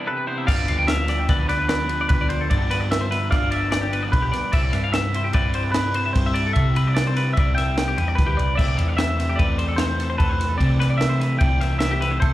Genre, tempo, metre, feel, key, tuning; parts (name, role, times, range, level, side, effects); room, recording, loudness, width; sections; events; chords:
math rock and midwest emo; 148 BPM; 5/4; straight; C major; A4 = 441 Hz
twangy electric guitar; accompaniment; 0.0-0.5 s; C3 to E4; -32 LUFS; right 3 dB; plate reverb, slapback echo
twelve-string electric guitar; arpeggios; 0.0-12.3 s; G4 to G5; -28 LUFS; left 3 dB; wide subtle chorus, plate reverb, slapback echo
crunchy overdriven guitar; riff; 0.0-12.3 s; G2 to E4; -29 LUFS; left 1 dB; slapback echo
twangy electric guitar; melody; 0.1-12.3 s; B4 to G5; -26 LUFS; right 1 dB; wide subtle chorus, plate reverb, slapback echo
hollow-body short-scale picked electric bass; bass; 0.5-12.3 s; G1 to C3; -23 LUFS; equal
compact cocktail drum kit; drums; 0.5-12.3 s; crash cymbal, kick drum, ride cymbal, snare drum; -23 LUFS; equal
light reverb; live gig heard through the venue's PA, club reverb; -18 LUFS; side -15 dB against mid
0.5-12.3 A section
break 0.0-0.5
0.5 G7; 4.5 Cmaj7